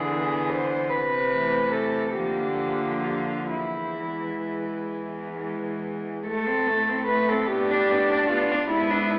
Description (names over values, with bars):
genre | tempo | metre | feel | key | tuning
classical, lyrical piece for cello ensemble | 42-51 BPM (dotted quarters) | 6/8 | rubato | A minor | A4 = 440 Hz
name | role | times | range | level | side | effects
warm cello | melody | 0.0-9.2 s | E4 to C5 | -28 LUFS | equal | none
warm cello | second line | 0.0-9.2 s | G#3 to D4 | -33 LUFS | equal | none
rich cello | accompaniment | 0.0-9.2 s | E3 to E4 | -32 LUFS | equal | none
warm cello | bass | 0.0-9.2 s | E2 to D3 | -34 LUFS | equal | none
room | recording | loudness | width
wet recital hall reverb, RT60 1.7 s | heard from further back in the room, AM radio sound | -25 LUFS | mono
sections
0.0-6.3 A section; 6.3-9.2 B section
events
none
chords
0.0 E7/D; 0.9 Am/C; 2.1 Bb/D; 3.5 E; 6.3 Am; 7.5 G9/A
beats
| 0.89 2.14 | 3.51 4.90 | 6.27 7.50 | 8.71